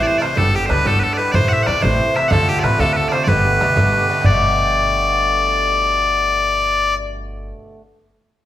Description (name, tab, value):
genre	celtic folk, Celtic jig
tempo	124 BPM (dotted quarters)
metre	6/8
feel	straight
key	G mixolydian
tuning	A4 = 440 Hz
part	loud bright bagpipes	melody	0.0-7.0 s	G4 to F#5	-18 LUFS	equal	none
part	Irish bouzouki	accompaniment	0.0-7.8 s	A2 to G4	-22 LUFS	right 2 dB	none
part	upright bass	bass	0.0-7.5 s	G1 to E2	-22 LUFS	equal	none
part	bodhran	percussion	0.2-4.4 s	none	-22 LUFS	right 1 dB	none
part	mellow accordion	second line	0.4-6.9 s	G4 to E5	-20 LUFS	left 5 dB	none
room	wet large studio reverb, RT60 1.2 s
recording	band playing live in one room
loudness	-14 LUFS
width	side -12 dB against mid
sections	0.0-4.2 A section; 4.2-6.2 B section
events	none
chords	0.4 Gadd9; 1.3 Am; 2.3 Dm7; 3.3 Gadd9